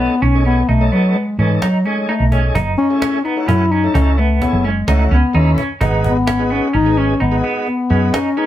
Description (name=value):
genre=progressive instrumental, band music in an uneven meter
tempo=129 BPM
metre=7/4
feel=straight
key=F# dorian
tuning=A4 = 441 Hz
part: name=dark bass clarinet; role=melody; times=0.0-8.5 s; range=E3 to E4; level=-17 LUFS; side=left 3 dB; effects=none
part: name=tonewheel organ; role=accompaniment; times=0.0-8.5 s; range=G#3 to B4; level=-23 LUFS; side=right 1 dB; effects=fast rotary speaker
part: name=semi-hollow electric guitar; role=arpeggios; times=0.0-8.5 s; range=B3 to D#4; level=-23 LUFS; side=right 4 dB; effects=tremolo
part: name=woody fretless electric bass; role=bass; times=0.0-8.1 s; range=F#1 to G#2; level=-16 LUFS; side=right 1 dB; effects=none
part: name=cajon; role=drums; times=0.2-8.4 s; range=none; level=-23 LUFS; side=equal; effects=none
room=light reverb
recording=band playing live in one room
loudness=-13 LUFS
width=side -12 dB against mid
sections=0.0-8.5 A section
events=none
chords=0.0 B13; 2.6 F#m7; 5.8 G#m7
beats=0.22 0.69 1.15 1.62 2.09 | 2.55 3.02 3.48 3.95 4.42 4.88 5.35 | 5.81 6.28 6.74 7.21 7.67 8.14